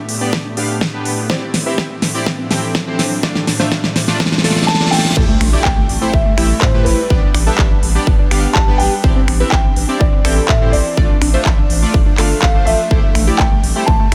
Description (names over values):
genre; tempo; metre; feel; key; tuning
progressive house; 124 BPM; 4/4; straight; A minor; A4 = 442 Hz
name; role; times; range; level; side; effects
evolving wavetable pad; sustained chords; 0.0-14.1 s; A2 to G4; -28 LUFS; equal; ensemble chorus, built-in reverb, sidechain pumping
tight sequenced synth; arpeggios; 0.0-14.1 s; A3 to D5; -27 LUFS; equal; chorus, phaser, sidechain pumping, digital delay
riser, reverse cymbal and impact; sound effects; 1.7-7.1 s; none; -28 LUFS; equal; none
big-room dance drum kit; drums; 0.1-14.1 s; crash cymbal, finger snaps, handclaps, hi-hat, snare drum; -21 LUFS; equal; studio reverb
soft supersaw; stabs; 0.2-14.1 s; A3 to G5; -24 LUFS; equal; sidechain pumping, digital delay
electronic kick drum; drums; 0.3-14.0 s; none; -17 LUFS; equal; high-pass filter on kick, studio reverb
dark grand piano; melody; 4.7-14.1 s; B4 to A5; -23 LUFS; equal; digital delay
round analog bass; bass; 5.2-14.1 s; G1 to A2; -20 LUFS; equal; sidechain pumping
room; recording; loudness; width
little or no reverb; none; -14 LUFS; mono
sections
0.0-5.2 A section; 5.2-14.1 B section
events
build-up 0.0-5.2; drum fill 0.0-5.2; filter sweep on synth arpeggio sound 0.0-5.2; filter sweep on ambient pad 0.0-5.2; reverse cymbal 4.2-5.2; drop 5.2-14.1; impact 5.2-7.1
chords
0.0 G/A; 1.3 Cadd9/A; 3.2 Dm/A; 5.2 Am7; 7.1 G/A; 9.0 Cadd9/A; 11.0 Dm/A; 12.9 Am7